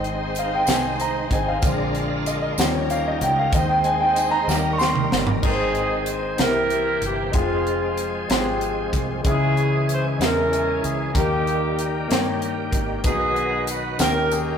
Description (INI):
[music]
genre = slow gospel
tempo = 63 BPM (dotted quarters)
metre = 6/8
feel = straight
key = Ab major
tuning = A4 = 438 Hz
[part]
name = warm grand piano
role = accompaniment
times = 0.0-14.6 s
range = Ab2 to Db6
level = -23 LUFS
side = left 1 dB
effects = none
[part]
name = bright tonewheel organ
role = sustained chords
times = 0.0-14.6 s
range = Db3 to G5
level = -29 LUFS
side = right 2 dB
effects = slow rotary speaker, chorus vibrato
[part]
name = warm studio string section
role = sustained chords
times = 0.0-5.4 s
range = Eb4 to Eb5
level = -32 LUFS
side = right 2 dB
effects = none
[part]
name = fingered electric bass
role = bass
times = 0.0-14.6 s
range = F1 to G2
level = -28 LUFS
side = equal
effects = none
[part]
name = crisp fusion drum kit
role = drums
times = 0.0-14.5 s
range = crash cymbal, hi-hat, kick drum, snare drum, toms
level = -24 LUFS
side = right 1 dB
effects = none
[part]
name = tambourine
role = percussion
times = 0.3-5.1, 13.0-14.6 s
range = none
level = -36 LUFS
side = right 4 dB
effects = none
[part]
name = warm horn section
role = melody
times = 5.4-14.6 s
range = Ab3 to C5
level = -24 LUFS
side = right 1 dB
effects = none
[sound]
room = moderate stone room reverb, RT60 1.5 s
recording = rough rehearsal-room recording, warm saturation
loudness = -19 LUFS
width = side -7 dB against mid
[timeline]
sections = 0.0-5.4 A section; 5.4-14.6 B section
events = grand piano solo 0.0-5.4; drum fill 4.5-5.4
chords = 0.0 Ab; 1.6 Bb7; 2.6 Eb7; 3.5 Ab/Eb; 4.5 Eb; 5.4 Ab; 6.4 C7; 7.3 Fm; 9.2 Dbm; 11.1 Eb; 13.1 B; 14.0 Eb7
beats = 0.67 | 1.62 2.58 | 3.53 4.48 | 5.43 6.38 | 7.34 8.29 | 9.24 10.19 | 11.15 12.10 | 13.05 14.00